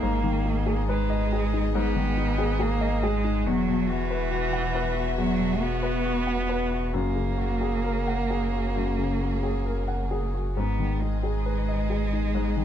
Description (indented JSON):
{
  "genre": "neoclassical piano and strings",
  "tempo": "68 BPM",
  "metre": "4/4",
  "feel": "rubato",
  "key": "G# minor",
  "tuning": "A4 = 440 Hz",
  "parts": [
    { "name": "rich cello", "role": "second line", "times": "0.0-12.6 s", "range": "E3 to B3", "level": "-29 LUFS", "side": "right 6 dB", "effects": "none" },
    { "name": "clear upright piano", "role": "accompaniment", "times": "0.0-12.6 s", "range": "E2 to F#5", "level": "-28 LUFS", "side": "left 5 dB", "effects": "none" },
    { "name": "rich chamber string section", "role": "sustained chords", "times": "0.0-12.6 s", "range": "G#3 to E5", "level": "-37 LUFS", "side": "left 1 dB", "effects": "none" },
    { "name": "warm sub bass", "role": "bass", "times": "0.0-12.6 s", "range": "E1 to G#1", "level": "-28 LUFS", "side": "equal", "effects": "none" }
  ],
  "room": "light reverb",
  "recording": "dark, warm production",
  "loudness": "-24 LUFS",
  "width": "side -10 dB against mid",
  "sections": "0.0-12.6 A section",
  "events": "none",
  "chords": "0.0 G#m; 3.5 Esus2; 6.9 F#add9; 10.6 G#m"
}